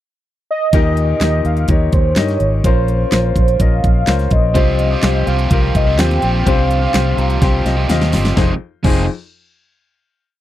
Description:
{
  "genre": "piano-driven pop",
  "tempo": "126 BPM",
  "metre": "4/4",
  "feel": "straight",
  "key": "F minor",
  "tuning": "A4 = 441 Hz",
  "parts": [
    { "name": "warm velvety synth lead", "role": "melody", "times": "0.5-7.9 s", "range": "C5 to G5", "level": "-20 LUFS", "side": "right 2 dB", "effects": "chorus" },
    { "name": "bright upright piano", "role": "accompaniment", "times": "0.7-9.1 s", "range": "F2 to Bb5", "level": "-20 LUFS", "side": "left 8 dB", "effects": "none" },
    { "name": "fingered electric bass", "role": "bass", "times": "0.7-9.1 s", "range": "F1 to G2", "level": "-16 LUFS", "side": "equal", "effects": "none" },
    { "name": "pop drum kit", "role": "drums", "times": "0.7-9.0 s", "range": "crash cymbal, handclaps, hi-hat, kick drum, snare drum", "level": "-16 LUFS", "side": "equal", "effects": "none" },
    { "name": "cranked stack guitar", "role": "riff", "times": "4.5-9.0 s", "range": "F2 to Ab4", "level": "-22 LUFS", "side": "right 6 dB", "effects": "overdrive" }
  ],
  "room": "little or no reverb",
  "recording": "dry, close 1970s-style studio recording",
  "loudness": "-12 LUFS",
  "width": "side -13 dB against mid",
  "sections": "0.0-0.7 pickup bar; 0.7-8.4 bridge; 8.4-10.3 final chord",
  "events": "upright piano fill 6.9-8.4; drum fill 7.4-8.4",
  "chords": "0.0 N.C.; 0.7 Eb; 2.6 Bbmadd9; 4.6 Csus4; 8.4 Fm7"
}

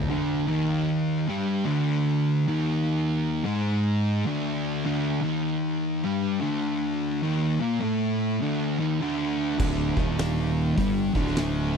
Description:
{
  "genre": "stoner and doom metal",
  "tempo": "101 BPM",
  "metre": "4/4",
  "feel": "swing 63% on 8ths",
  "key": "unclear",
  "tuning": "A4 = 440 Hz",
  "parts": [
    { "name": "fuzz guitar", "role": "riff", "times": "0.0-11.8 s", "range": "D2 to Bb3", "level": "-30 LUFS", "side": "right 2 dB", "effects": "distortion" },
    { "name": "thick fuzz guitar", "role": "riff", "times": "0.0-11.8 s", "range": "D2 to Bb3", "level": "-27 LUFS", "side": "left 7 dB", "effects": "distortion" },
    { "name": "thick fuzz guitar", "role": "riff", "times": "0.0-11.8 s", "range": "D2 to Bb3", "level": "-29 LUFS", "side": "right 10 dB", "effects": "distortion" },
    { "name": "fuzz fingered electric bass", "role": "bass", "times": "0.0, 9.6-11.8 s", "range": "D1 to G1", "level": "-29 LUFS", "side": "equal", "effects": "overdrive" },
    { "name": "oversized low-tuned drum kit", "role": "drums", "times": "9.6-11.5 s", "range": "crash cymbal, hi-hat, kick drum, snare drum", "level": "-30 LUFS", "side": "equal", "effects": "none" }
  ],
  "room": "little or no reverb",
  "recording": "none",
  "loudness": "-23 LUFS",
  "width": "side -6 dB against mid",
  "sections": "0.1-11.8 A section",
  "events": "none",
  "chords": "0.1 D5"
}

